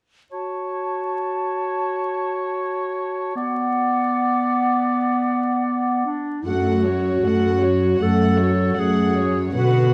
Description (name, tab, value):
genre	cinematic, emotional film score for orchestra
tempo	78 BPM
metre	4/4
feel	rubato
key	F# minor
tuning	A4 = 440 Hz
part	clear clarinet	second line	0.3-9.9 s	B3 to A4	-25 LUFS	equal	none
part	mellow small flute group	second line	0.3-6.1 s	F#5 to A5	-29 LUFS	equal	none
part	warm oboe	second line	0.3-6.1 s	C#5 to D5	-29 LUFS	equal	none
part	warm studio violin section	melody	6.5-9.9 s	C#5 to F#5	-31 LUFS	equal	none
part	dark symphonic viola section	accompaniment	6.5-9.9 s	D3 to B4	-25 LUFS	equal	none
part	warm symphonic cello section	bass	6.5-9.9 s	F#2 to B2	-23 LUFS	equal	none
room	moderate scoring stage reverb, RT60 2.0 s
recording	vinyl crackle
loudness	-21 LUFS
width	mono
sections	0.3-6.5 A section; 6.5-9.9 B section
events	none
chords	0.3 F#m; 3.4 Bm; 6.5 F#m